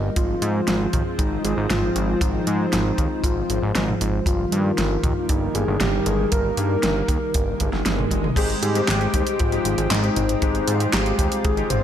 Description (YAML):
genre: synthwave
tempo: 117 BPM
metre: 4/4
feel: straight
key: Ab major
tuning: A4 = 441 Hz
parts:
  - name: lush unison pad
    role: sustained chords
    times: 0.0-11.8 s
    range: Eb3 to G4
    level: -26 LUFS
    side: equal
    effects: chorus, sidechain pumping
  - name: fat analog bass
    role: bass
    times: 0.0-11.8 s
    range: G1 to Ab2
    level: -24 LUFS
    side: equal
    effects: sidechain pumping
  - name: soft octave-layered synth lead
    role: melody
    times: 0.2-11.8 s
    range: Eb4 to C5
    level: -26 LUFS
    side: left 1 dB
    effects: chorus, cassette tape, ping-pong delay
  - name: kick drum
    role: drums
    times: 0.2-11.5 s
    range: none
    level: -25 LUFS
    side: equal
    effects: none
  - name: pop drum kit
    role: drums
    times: 0.2-11.8 s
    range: crash cymbal, handclaps, hi-hat, snare drum, toms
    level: -26 LUFS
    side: right 1 dB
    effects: overdrive
  - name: swell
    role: sound effects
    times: 7.5-8.4 s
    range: none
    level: -32 LUFS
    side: right 6 dB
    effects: none
  - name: warm concert grand piano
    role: stabs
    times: 8.4-11.7 s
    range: Ab3 to G4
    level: -27 LUFS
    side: left 5 dB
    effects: analog chorus, analog delay
room: light reverb, small room ambience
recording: none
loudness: -19 LUFS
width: side -10 dB against mid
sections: 0.0-8.4 A section; 8.4-11.8 B section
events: swell 7.5-8.4; drum fill 8.1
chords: 0.2 Ab6; 4.3 Eb/G; 8.4 Abmaj7